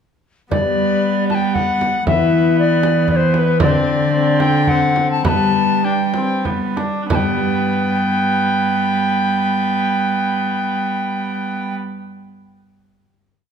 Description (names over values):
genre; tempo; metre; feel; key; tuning
classical, renaissance-style consort dance; 90-118 BPM; 3/4; straight; G major; A4 = 440 Hz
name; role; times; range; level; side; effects
tenor recorder; melody; 0.5-11.7 s; B4 to B5; -19 LUFS; left 2 dB; none
concert harp; accompaniment; 0.5-12.0 s; G2 to D5; -22 LUFS; left 7 dB; none
warm viola; accompaniment; 0.5-11.8 s; B3 to D4; -23 LUFS; equal; none
rich cello; bass; 0.5-11.7 s; D3 to G3; -21 LUFS; right 4 dB; none
frame drum; percussion; 0.5-7.4 s; none; -23 LUFS; right 4 dB; none
room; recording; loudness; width
wet recital hall reverb, RT60 1.6 s; minimal, uncompressed stereo recording; -15 LUFS; side -7 dB against mid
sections
0.5-7.1 A section; 7.1-11.0 final chord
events
slowing down 2.8-7.1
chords
0.5 G; 2.1 Em; 3.6 D7sus4; 4.1 D5; 5.2 G